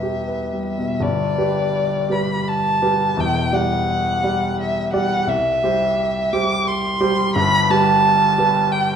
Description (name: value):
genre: classical, romantic duo for violin and grand piano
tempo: 85 BPM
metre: 3/4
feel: uneven beats, rubato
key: G major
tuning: A4 = 438 Hz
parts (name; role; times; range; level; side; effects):
- warm violin; melody; 0.0-9.0 s; D5 to D6; -19 LUFS; equal; none
- clear baby grand piano; accompaniment; 0.0-9.0 s; E1 to D5; -20 LUFS; equal; none
room: wet stone room reverb, RT60 1.3 s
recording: dark, warm production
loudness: -16 LUFS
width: side -7 dB against mid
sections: 0.0-1.0 A section; 1.0-9.0 B section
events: none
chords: 0.0 Em; 1.0 G; 3.2 Em7; 5.3 C; 7.4 G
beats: 0.28 | 1.03 1.75 2.47 | 3.18 3.88 4.59 | 5.29 5.99 6.67 | 7.35 8.04 8.72